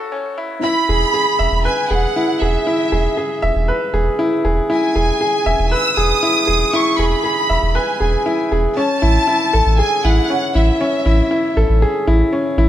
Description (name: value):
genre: piano and strings electronica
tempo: 118 BPM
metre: 4/4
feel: straight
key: E major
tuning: A4 = 440 Hz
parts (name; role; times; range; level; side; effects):
- clear upright piano; riff; 0.0-12.7 s; C#4 to E5; -17 LUFS; equal; tape echo
- warm symphonic violin section; melody; 0.6-11.6 s; E5 to E6; -18 LUFS; right 1 dB; none
- warm sub bass; bass; 0.9-12.7 s; E1 to A1; -16 LUFS; equal; none
room: light reverb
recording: high-pass filter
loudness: -14 LUFS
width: side -12 dB against mid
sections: 0.6-12.7 A section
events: break 0.0-0.6; drop 0.6-12.7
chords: 0.0 F#m7; 0.6 E; 8.8 Amaj7